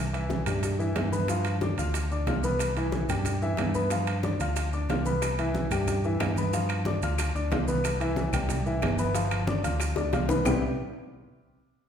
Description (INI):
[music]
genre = Afro-Cuban jazz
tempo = 183 BPM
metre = 4/4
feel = straight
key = C major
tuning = A4 = 440 Hz
[part]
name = fingered electric bass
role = bass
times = 0.0-10.6 s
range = G1 to G2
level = -29 LUFS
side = equal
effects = none
[part]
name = warm grand piano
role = accompaniment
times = 0.1-10.6 s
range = C3 to F6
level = -30 LUFS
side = left 2 dB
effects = none
[part]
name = congas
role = percussion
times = 0.1-10.5 s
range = none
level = -34 LUFS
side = equal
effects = none
[part]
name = maracas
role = percussion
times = 0.1-10.5 s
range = none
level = -42 LUFS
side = right 7 dB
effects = none
[part]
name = timbales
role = percussion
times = 0.1-10.5 s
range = none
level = -35 LUFS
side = right 5 dB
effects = none
[part]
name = bongos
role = percussion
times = 0.3-10.5 s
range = none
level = -36 LUFS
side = left 4 dB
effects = none
[part]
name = claves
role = percussion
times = 5.2-10.5 s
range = none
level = -42 LUFS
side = left 5 dB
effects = none
[sound]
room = wet recital hall reverb, RT60 1.4 s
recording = recorded in a church or concert hall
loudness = -25 LUFS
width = side -8 dB against mid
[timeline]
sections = 0.0-10.5 A section; 10.5-11.8 B section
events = drum fill 10.0-10.5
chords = 0.0 Cmaj7; 1.3 G7; 2.6 Cmaj7; 3.9 G7; 5.2 Cmaj7; 6.5 G7; 7.8 Cmaj7; 9.2 G7; 10.5 Cmaj7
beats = 0.30 0.63 0.96 | 1.29 1.61 1.94 2.27 | 2.60 2.93 3.25 3.58 | 3.91 4.24 4.56 4.89 | 5.22 5.55 5.88 6.20 | 6.53 6.86 7.18 7.51 | 7.84 8.17 8.50 8.82 | 9.15 9.48 9.81 10.13 | 10.46